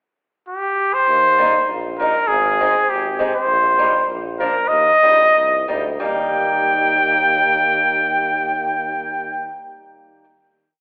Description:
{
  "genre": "alpine folk, alpine dance band",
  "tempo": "86-101 BPM",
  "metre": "2/4",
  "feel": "straight",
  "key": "Eb major",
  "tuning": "A4 = 441 Hz",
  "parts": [
    { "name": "bright trumpet", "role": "melody", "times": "0.5-9.6 s", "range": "G4 to G5", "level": "-18 LUFS", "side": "equal", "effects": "none" },
    { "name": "warm tuba", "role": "bass", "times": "1.1-9.5 s", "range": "Ab1 to Eb2", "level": "-30 LUFS", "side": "equal", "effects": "none" },
    { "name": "picked swing-style acoustic guitar", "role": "accompaniment", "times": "1.4-10.3 s", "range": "F3 to Eb4", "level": "-26 LUFS", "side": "equal", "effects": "none" }
  ],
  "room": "wet recital hall reverb, RT60 1.8 s",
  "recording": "recorded in a church or concert hall, telephone sound",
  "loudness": "-17 LUFS",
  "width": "mono",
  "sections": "0.0-1.1 pickup bar; 1.1-6.0 A section; 6.0-8.8 final chord",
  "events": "slowing down 3.5-6.0",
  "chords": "0.0 N.C.; 1.1 Eb; 2.3 Ab; 3.5 Eb/Bb; 4.1 Bb; 4.7 Eb"
}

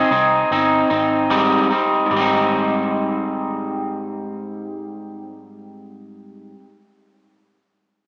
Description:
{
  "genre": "indie pop",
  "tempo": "75 BPM",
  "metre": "4/4",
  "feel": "straight",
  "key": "Ab major",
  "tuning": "A4 = 442 Hz",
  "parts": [
    { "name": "trumpet with straight mute", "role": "melody", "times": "0.0-1.3 s", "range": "Ab4", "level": "-26 LUFS", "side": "equal", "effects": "lush chorus, analog delay" },
    { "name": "electric guitar at the edge of break-up", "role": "accompaniment", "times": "0.0-6.7 s", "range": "Ab2 to Eb4", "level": "-21 LUFS", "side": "equal", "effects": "subtle chorus, warbly pitch drift" },
    { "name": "vintage muted picked electric bass", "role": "bass", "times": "0.0-6.5 s", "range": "G1 to C2", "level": "-36 LUFS", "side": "equal", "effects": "none" }
  ],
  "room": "wet lush hall reverb, RT60 3.0 s",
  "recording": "rough home demo mix, small speaker sound",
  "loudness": "-19 LUFS",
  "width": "mono",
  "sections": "0.0-2.1 A section; 2.1-5.3 B section",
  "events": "none",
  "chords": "0.0 Abmaj7"
}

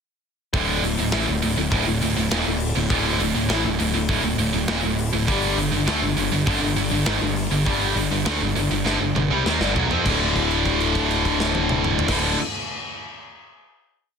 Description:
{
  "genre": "heavy metal",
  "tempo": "101 BPM",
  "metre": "4/4",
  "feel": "straight",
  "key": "unclear",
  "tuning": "A4 = 440 Hz",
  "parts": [
    { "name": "high-gain distorted guitar", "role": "riff", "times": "0.5-12.4 s", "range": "D2 to C4", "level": "-23 LUFS", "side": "right 11 dB", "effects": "distortion" },
    { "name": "tight distorted guitar", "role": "riff", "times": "0.5-12.4 s", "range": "D2 to C4", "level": "-25 LUFS", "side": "left 12 dB", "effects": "distortion" },
    { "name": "fuzz picked electric bass", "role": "bass", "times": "0.5-12.3 s", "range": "D1 to F2", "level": "-26 LUFS", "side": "equal", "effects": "overdrive" },
    { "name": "big rock drum kit", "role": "drums", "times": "0.5-12.2 s", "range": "crash cymbal, hi-hat, kick drum, snare drum, toms", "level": "-26 LUFS", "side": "left 1 dB", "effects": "soft clipping on snare" }
  ],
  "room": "light reverb",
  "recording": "dense, heavily limited modern master",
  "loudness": "-19 LUFS",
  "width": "side -6 dB against mid",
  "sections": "0.5-10.1 riff; 10.1-12.5 final chord",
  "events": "drum fill 8.9-10.1; held note 10.1-12.1",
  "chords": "0.5 D5; 5.3 G5; 10.1 D5"
}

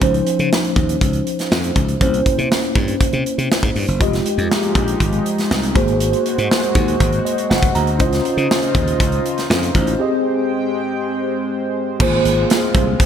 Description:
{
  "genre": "polished 1980s jazz-funk pop",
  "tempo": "120 BPM",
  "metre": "4/4",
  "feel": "straight",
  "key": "unclear",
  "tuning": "A4 = 440 Hz",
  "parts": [
    { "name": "mellow tine electric piano", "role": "accompaniment", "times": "0.0-13.1 s", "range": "F3 to Bb5", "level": "-19 LUFS", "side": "equal", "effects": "medium stereo tremolo, wide subtle chorus" },
    { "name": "glassy slap bass", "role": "bass", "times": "0.0-12.9 s", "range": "F1 to Db3", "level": "-20 LUFS", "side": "equal", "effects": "none" },
    { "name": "modern studio drum kit", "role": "drums", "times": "0.0-13.1 s", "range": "crash cymbal, hi-hat, kick drum, snare drum", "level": "-19 LUFS", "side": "equal", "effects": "none" },
    { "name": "chorused pulse-width pad", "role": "sustained chords", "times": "4.0-13.1 s", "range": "C3 to G5", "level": "-24 LUFS", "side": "equal", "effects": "none" }
  ],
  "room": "moderate lush hall reverb, RT60 2.5 s",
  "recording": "big arena sound",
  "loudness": "-15 LUFS",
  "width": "side -8 dB against mid",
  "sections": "0.0-12.0 A section; 12.0-13.1 B section",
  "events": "tine electric piano fill 7.0-8.0; break 10.0-12.0",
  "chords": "0.0 Dbmaj9; 2.0 C7b9; 4.0 Fm9; 5.8 Ab9; 8.0 Dbmaj9; 10.0 Abmaj7; 12.0 Ab69"
}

